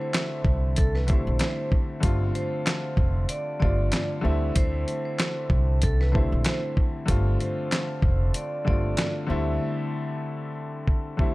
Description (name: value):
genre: hip hop, boom-bap hip-hop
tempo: 95 BPM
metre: 4/4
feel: swing 57% on 16ths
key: unclear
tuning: A4 = 440 Hz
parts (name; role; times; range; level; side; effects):
- vibraphone with medium mallets; melody; 0.0-9.1 s; A4 to D5; -33 LUFS; right 2 dB; high-pass filter, low-pass filter
- warm upright piano; accompaniment; 0.0-11.3 s; D3 to F4; -30 LUFS; left 2 dB; cassette tape, high-pass filter, low-pass filter
- dusty soul sampler-style drum kit; drums; 0.1-11.3 s; handclaps, hi-hat, kick drum, snare drum; -24 LUFS; equal; none
- upright bass; bass; 0.4-9.6 s; F1 to D2; -25 LUFS; equal; none
room: small room ambience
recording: none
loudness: -23 LUFS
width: side -20 dB against mid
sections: 0.0-11.3 A section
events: break 9.6-11.3; drum fill 10.9-11.3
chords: 0.0 D9sus4; 2.0 G9sus4; 4.2 D9sus4; 7.1 G9sus4; 9.3 D9sus4